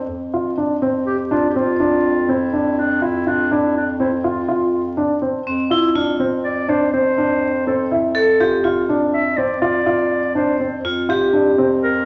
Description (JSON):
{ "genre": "contemporary instrumental, chamber music in an uneven meter", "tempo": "245 BPM (eighths)", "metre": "11/8", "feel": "straight", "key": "F major", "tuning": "A4 = 441 Hz", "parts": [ { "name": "warm bass clarinet", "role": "bass", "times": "0.0-12.1 s", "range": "F2", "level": "-26 LUFS", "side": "equal", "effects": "none" }, { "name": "dark baby grand piano", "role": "arpeggios", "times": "0.3-11.9 s", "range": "C4 to F4", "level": "-22 LUFS", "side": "equal", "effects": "none" }, { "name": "warm clarinet", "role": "melody", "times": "1.1-12.1 s", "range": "D4 to E5", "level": "-23 LUFS", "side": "equal", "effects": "none" }, { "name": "vibraphone with hard mallets", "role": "second line", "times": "5.5-11.7 s", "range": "C4 to A4", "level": "-20 LUFS", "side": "equal", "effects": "none" } ], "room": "wet recital hall reverb, RT60 1.2 s", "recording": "vinyl crackle, nothing above 7.5 kHz", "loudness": "-18 LUFS", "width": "mono", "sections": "0.0-12.1 A section", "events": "none", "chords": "0.1 Dm9/F; 5.5 F5; 10.8 Fsus2" }